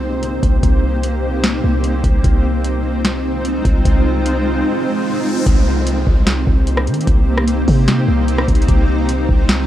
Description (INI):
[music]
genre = hip hop, atmospheric cloud-rap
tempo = 149 BPM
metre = 4/4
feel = half-time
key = C minor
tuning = A4 = 440 Hz
[part]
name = granular cloud pad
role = sustained chords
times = 0.0-9.7 s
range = Ab3 to C5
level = -18 LUFS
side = equal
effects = built-in reverb, sidechain pumping, cassette tape
[part]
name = warm 808-style bass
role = bass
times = 0.0-9.7 s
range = C2 to Eb3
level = -18 LUFS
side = equal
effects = none
[part]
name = booming analog drum machine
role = drums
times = 0.2-9.6 s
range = hi-hat, kick drum, rim click, snare drum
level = -15 LUFS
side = equal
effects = overdrive
[part]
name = riser and downlifter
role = sound effects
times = 4.5-8.7 s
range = none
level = -32 LUFS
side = left 1 dB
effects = none
[sound]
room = light reverb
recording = home recording on cassette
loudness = -13 LUFS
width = side -12 dB against mid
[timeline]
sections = 0.0-5.5 A section; 5.5-9.7 B section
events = riser 4.5-5.5; break 4.7-5.5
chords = 0.0 Cm7; 2.2 Fm7/C; 5.5 Cm7; 8.7 Fm7/C